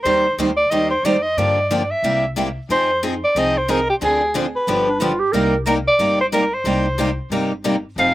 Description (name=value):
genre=acoustic string swing (jazz manouche)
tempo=182 BPM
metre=4/4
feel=swing 59% on 8ths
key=C minor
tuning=A4 = 440 Hz
part: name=breathy soprano saxophone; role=melody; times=0.0-8.1 s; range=G4 to F5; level=-18 LUFS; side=equal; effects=none
part: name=upright bass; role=bass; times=0.0-8.1 s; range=F1 to G2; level=-28 LUFS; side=left 1 dB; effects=none
part: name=picked steel-string acoustic guitar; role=accompaniment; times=0.1-8.1 s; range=C3 to C5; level=-23 LUFS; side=left 5 dB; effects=none
part: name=picked steel-string acoustic guitar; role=accompaniment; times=0.1-8.1 s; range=C3 to C5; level=-23 LUFS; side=right 4 dB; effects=none
part: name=breathy clarinet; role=second line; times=4.9-5.6 s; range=D4 to Bb4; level=-20 LUFS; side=right 3 dB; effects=none
room=little or no reverb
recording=recorded outdoors, with no room sound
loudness=-16 LUFS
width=side -15 dB against mid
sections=0.0-8.0 A section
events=none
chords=0.1 Eb6; 1.4 Gm7; 2.0 C7; 2.7 Fm7; 4.0 Dm7b5; 4.7 G7; 5.3 Cm7